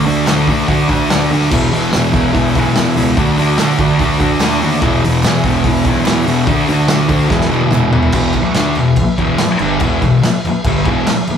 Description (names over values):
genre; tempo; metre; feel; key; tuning
garage rock duo or trio; 145 BPM; 4/4; straight; E mixolydian; A4 = 443 Hz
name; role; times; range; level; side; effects
combo organ; sustained chords; 0.0-11.4 s; F#4 to B5; -25 LUFS; equal; none
thick fuzz guitar; riff; 0.0-11.3 s; E2 to D4; -13 LUFS; left 1 dB; distortion
fuzz picked electric bass; bass; 0.0-11.3 s; E1 to E2; -20 LUFS; right 1 dB; overdrive
raw garage drum kit; drums; 0.1-11.4 s; crash cymbal, hi-hat, kick drum, snare drum, toms; -18 LUFS; equal; none
group handclap; percussion; 0.3-11.2 s; none; -28 LUFS; right 3 dB; none
room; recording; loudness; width
light reverb; band playing live in one room; -11 LUFS; side -8 dB against mid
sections
0.0-8.2 A section; 8.2-11.4 B section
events
drum fill 7.3-8.2; transistor combo organ fill 7.3-8.2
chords
0.0 D; 1.5 E; 3.2 D; 4.8 E; 6.5 D; 7.3 E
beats
0.27 0.69 1.10 | 1.51 1.93 2.34 2.76 | 3.17 3.59 4.00 4.42 | 4.83 5.24 5.66 6.07 | 6.49 6.91 7.32 7.74 | 8.15 8.57 8.99 9.40 | 9.82 10.24 10.66 11.07